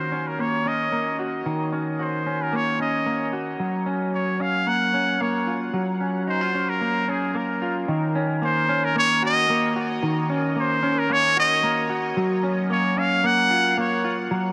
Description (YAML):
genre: dream pop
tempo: 112 BPM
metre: 4/4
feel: straight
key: Eb dorian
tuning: A4 = 443 Hz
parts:
  - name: trumpet with straight mute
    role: melody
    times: 0.0-14.2 s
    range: Ab4 to Gb5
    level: -26 LUFS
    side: equal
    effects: tape echo
  - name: semi-hollow electric guitar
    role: arpeggios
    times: 0.0-14.5 s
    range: Eb3 to Gb4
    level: -26 LUFS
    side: equal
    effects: lush chorus, tape echo
room: moderate huge ambient reverb, RT60 9.2 s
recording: none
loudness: -23 LUFS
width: mono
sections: 0.0-7.9 A section; 7.9-14.5 B section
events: none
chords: 0.0 Ebm7; 3.6 Gbmaj7; 7.9 Ebm7; 12.2 Gbmaj7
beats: 0.39 0.92 | 1.46 1.99 2.53 3.06 | 3.60 4.14 4.67 5.21 | 5.74 6.28 6.82 7.35 | 7.89 8.42 8.96 9.49 | 10.03 10.56 11.10 11.64 | 12.17 12.71 13.24 13.78 | 14.31